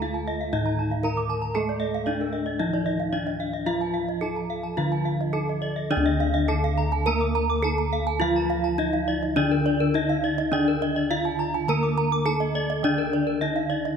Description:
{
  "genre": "Balinese gamelan",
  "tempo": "104-116 BPM",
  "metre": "4/4",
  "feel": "straight",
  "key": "D pelog",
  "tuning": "A4 = 441 Hz",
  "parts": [
    { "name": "gamelan-type bronze metallophone", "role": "melody", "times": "0.0-14.0 s", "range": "D4 to Bb4-20c", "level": "-27 LUFS", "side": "left 2 dB", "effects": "none" },
    { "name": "gamelan-type bronze metallophone", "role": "accompaniment", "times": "0.0-14.0 s", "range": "D3 to Bb3-20c", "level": "-33 LUFS", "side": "right 7 dB", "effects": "none" },
    { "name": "gamelan-type bronze metallophone", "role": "arpeggios", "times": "0.0-13.8 s", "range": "Bb4-20c to D6", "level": "-30 LUFS", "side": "left 4 dB", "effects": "none" },
    { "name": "gamelan-type bossed gongs", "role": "bass", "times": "0.0-14.0 s", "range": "D2 to A4-30c", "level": "-28 LUFS", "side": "left 1 dB", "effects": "none" },
    { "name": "gamelan-type bronze metallophone", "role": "arpeggios", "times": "0.1-14.0 s", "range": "Bb4-20c to D6", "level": "-31 LUFS", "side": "right 8 dB", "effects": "none" }
  ],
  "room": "moderate concert hall reverb, RT60 2.1 s",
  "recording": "none",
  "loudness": "-22 LUFS",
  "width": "side -7 dB against mid",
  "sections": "0.0-5.9 A section; 5.9-14.0 B section",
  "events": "none",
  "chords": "none"
}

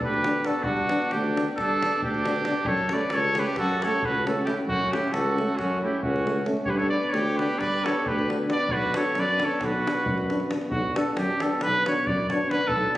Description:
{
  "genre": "balkan folk, Balkan brass band",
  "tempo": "268 BPM (eighths)",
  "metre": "9/8",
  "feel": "straight",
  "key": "B minor",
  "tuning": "A4 = 439 Hz",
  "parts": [
    { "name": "warm trumpet", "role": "melody", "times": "0.0-13.0 s", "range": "F#4 to D5", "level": "-26 LUFS", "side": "equal", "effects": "none" },
    { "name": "clear trumpet", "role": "second line", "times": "0.0-10.5 s", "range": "C#4 to B4", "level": "-31 LUFS", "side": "right 1 dB", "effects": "none" },
    { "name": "mellow tuba", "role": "bass", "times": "0.0-12.9 s", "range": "B1 to G2", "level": "-29 LUFS", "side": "equal", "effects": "none" },
    { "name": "davul", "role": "percussion", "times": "0.0-13.0 s", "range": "none", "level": "-35 LUFS", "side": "left 1 dB", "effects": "none" },
    { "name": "warm euphonium", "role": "accompaniment", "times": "0.2-12.6 s", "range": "A3 to B3", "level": "-35 LUFS", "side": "right 2 dB", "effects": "none" },
    { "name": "warm trombone", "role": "accompaniment", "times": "0.3-12.6 s", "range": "C#4 to D4", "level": "-31 LUFS", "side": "left 2 dB", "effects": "none" }
  ],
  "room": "moderate concert hall reverb, RT60 2.5 s",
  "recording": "recorded on a phone in the room, studio reverb",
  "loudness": "-22 LUFS",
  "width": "side -15 dB against mid",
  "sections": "0.0-10.7 A section; 10.7-13.0 B section",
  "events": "none",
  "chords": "0.0 G; 2.7 F#m; 6.7 G; 8.7 Bm"
}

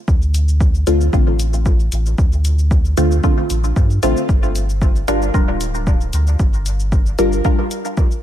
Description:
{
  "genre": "dub techno",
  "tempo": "114 BPM",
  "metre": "4/4",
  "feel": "straight",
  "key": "D minor",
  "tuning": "A4 = 441 Hz",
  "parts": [
    { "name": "warm sub bass", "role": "bass", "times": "0.1-7.4 s", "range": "D1 to G2", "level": "-17 LUFS", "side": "equal", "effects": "sidechain pumping" },
    { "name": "electronic cabasa and hi-hat", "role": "drums", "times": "0.1-8.2 s", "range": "none", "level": "-31 LUFS", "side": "left 3 dB", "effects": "none" },
    { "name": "electronic kick drum", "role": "drums", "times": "0.1-8.1 s", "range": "none", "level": "-15 LUFS", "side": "equal", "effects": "none" },
    { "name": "filtered dub chord stab", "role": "stabs", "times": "0.9-7.6 s", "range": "D3 to Bb4", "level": "-20 LUFS", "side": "equal", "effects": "chorus, phaser, sidechain pumping, dub echo" }
  ],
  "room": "little or no reverb",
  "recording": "none",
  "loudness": "-14 LUFS",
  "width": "side -11 dB against mid",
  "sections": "0.0-8.2 A section",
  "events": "none",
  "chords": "0.0 Dm7; 4.3 Gm7"
}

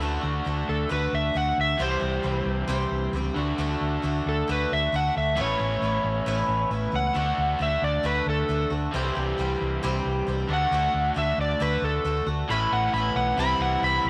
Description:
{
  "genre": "rock",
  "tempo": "135 BPM",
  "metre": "4/4",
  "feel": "straight",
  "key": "D mixolydian",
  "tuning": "A4 = 440 Hz",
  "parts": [
    { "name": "picked twelve-string acoustic guitar", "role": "accompaniment", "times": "0.0-14.1 s", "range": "A2 to G4", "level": "-33 LUFS", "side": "equal", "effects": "none" },
    { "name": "crunchy overdriven guitar", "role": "riff", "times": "0.0-14.1 s", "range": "A2 to G4", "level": "-33 LUFS", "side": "equal", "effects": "none" },
    { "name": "hollow-body short-scale fingered electric bass", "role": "bass", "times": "0.0-14.1 s", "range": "A1 to D2", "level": "-31 LUFS", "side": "equal", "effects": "none" },
    { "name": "overdriven slide guitar", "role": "melody", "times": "0.7-14.1 s", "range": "A4 to B5", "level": "-28 LUFS", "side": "equal", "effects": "tape echo" }
  ],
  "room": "moderate echo chamber reverb, RT60 1.9 s",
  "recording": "none",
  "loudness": "-25 LUFS",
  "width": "mono",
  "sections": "0.0-14.1 A section",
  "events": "electric slide guitar solo 0.0-14.1",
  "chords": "0.0 D; 1.8 C; 3.4 D; 5.4 Aadd9; 7.2 D; 8.9 C; 10.5 D; 12.5 Aadd9; 13.4 C"
}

